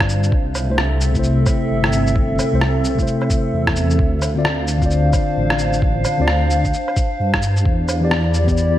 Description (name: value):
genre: future garage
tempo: 131 BPM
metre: 4/4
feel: swing 62% on 16ths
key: D minor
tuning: A4 = 441 Hz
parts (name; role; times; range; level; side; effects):
- mellow tine electric piano; accompaniment; 0.0-8.8 s; C3 to D5; -21 LUFS; left 2 dB; fast stereo tremolo, sidechain pumping, ping-pong delay
- warbly tape-like pad; sustained chords; 0.0-8.8 s; C4 to F5; -22 LUFS; right 1 dB; chorus, built-in reverb, sidechain pumping
- dark detuned saw bass; bass; 0.0-8.8 s; G1 to G2; -19 LUFS; equal; sidechain pumping
- electronic kick drum; drums; 0.0-8.6 s; none; -20 LUFS; equal; none
- electronic rim click, shaker and woodblock; drums; 0.0-8.7 s; none; -23 LUFS; equal; none
room: moderate plate reverb, RT60 1.6 s, digital ambience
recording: dreamy mix soaked in reverb, vinyl crackle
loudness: -15 LUFS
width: side -13 dB against mid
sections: 0.0-8.8 A section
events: none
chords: 0.3 C6; 4.0 Dm7; 7.7 Em7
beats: | 0.33 0.79 1.24 1.70 | 2.16 2.62 3.08 3.53 | 3.99 4.45 4.91 5.37 | 5.82 6.28 6.74 7.20 | 7.66 8.11 8.57